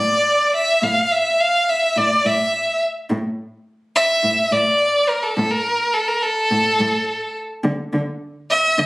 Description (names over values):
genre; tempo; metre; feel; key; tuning
Arabic maqam ensemble; 106 BPM; 4/4; straight; A maqam hijaz; A4 = 440 Hz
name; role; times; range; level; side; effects
clear violin; melody; 0.0-8.9 s; A4 to F5; -16 LUFS; equal; none
dark cello; bass; 0.0-8.9 s; A2 to D3; -22 LUFS; equal; none
room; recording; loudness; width
light reverb; recorded on a phone in the room, studio reverb, compression; -16 LUFS; side -21 dB against mid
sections
0.0-7.6 A section; 7.6-8.9 B section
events
none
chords
none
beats
0.25 | 0.82 1.39 1.96 2.52 | 3.09 3.66 4.23 4.80 | 5.37 5.94 6.51 7.07 | 7.64 8.21 8.78